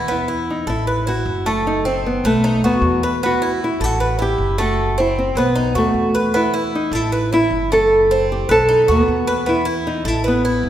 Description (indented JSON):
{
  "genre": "latin, Cuban son and guajira",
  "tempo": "154 BPM",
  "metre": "4/4",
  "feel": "straight",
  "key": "unclear",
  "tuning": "A4 = 440 Hz",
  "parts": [
    { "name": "nylon-string guitar", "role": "melody", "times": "0.0-10.7 s", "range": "A3 to A4", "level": "-18 LUFS", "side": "equal", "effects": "none" },
    { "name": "Cuban tres", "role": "arpeggios", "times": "0.0-10.7 s", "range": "A3 to B4", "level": "-21 LUFS", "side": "right 1 dB", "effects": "none" },
    { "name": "upright bass", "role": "bass", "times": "0.0-10.7 s", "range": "F#1 to E2", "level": "-23 LUFS", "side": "equal", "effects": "none" }
  ],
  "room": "wet concert hall reverb, RT60 2.1 s",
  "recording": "recorded in a church or concert hall",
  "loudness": "-15 LUFS",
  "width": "side -11 dB against mid",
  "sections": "0.1-10.7 A section",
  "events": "none",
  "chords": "0.1 E5; 0.9 Asus2; 1.7 F#dim; 2.4 B; 3.2 E5; 4.0 Asus2; 4.8 F#dim; 5.6 B7; 6.3 E5; 7.1 Asus2; 7.9 F#dim; 8.7 B; 9.5 E5"
}